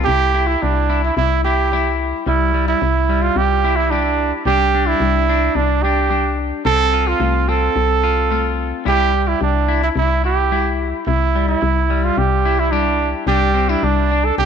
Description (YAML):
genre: highlife guitar band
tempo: 109 BPM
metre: 4/4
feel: straight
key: C major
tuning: A4 = 441 Hz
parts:
  - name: mellow trumpet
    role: melody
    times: 0.0-14.5 s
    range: D4 to A4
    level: -18 LUFS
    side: right 8 dB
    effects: tape echo
  - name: electric guitar at the edge of break-up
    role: accompaniment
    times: 0.0-14.5 s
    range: C3 to G4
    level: -22 LUFS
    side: left 13 dB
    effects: none
  - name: woody FM bass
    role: bass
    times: 0.0-14.5 s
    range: C2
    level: -19 LUFS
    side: left 1 dB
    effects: none
room: light reverb, small room ambience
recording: 1960s-style stereo with parts hard left and right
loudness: -15 LUFS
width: side -7 dB against mid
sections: 0.1-14.5 A section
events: none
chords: 0.1 C; 4.5 G5/C; 6.7 F/C; 8.9 C; 13.3 G5/C